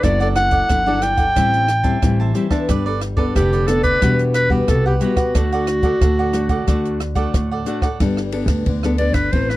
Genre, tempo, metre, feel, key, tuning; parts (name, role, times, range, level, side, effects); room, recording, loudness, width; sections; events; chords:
samba and choro; 90 BPM; 4/4; straight; G major; A4 = 442 Hz
bright clarinet; melody; 0.0-9.6 s; F#4 to G5; -19 LUFS; equal
cavaquinho; accompaniment; 0.0-8.0 s; D4 to A5; -26 LUFS; right 5 dB
nylon-string guitar; accompaniment; 0.0-9.6 s; A2 to B4; -22 LUFS; left 3 dB
upright bass; bass; 0.0-9.6 s; E1 to D2; -20 LUFS; equal
compact cocktail drum kit; drums; 0.0-9.6 s; hi-hat, kick drum, ride cymbal, rim click; -21 LUFS; equal
little or no reverb; dry, close 1970s-style studio recording; -15 LUFS; side -17 dB against mid
0.0-8.0 A section; 8.0-9.6 B section
clarinet solo 8.0-9.6
0.0 Dadd9/F#; 1.4 Am7; 2.7 Gadd9; 4.0 Emadd9; 5.3 D; 8.0 Gadd9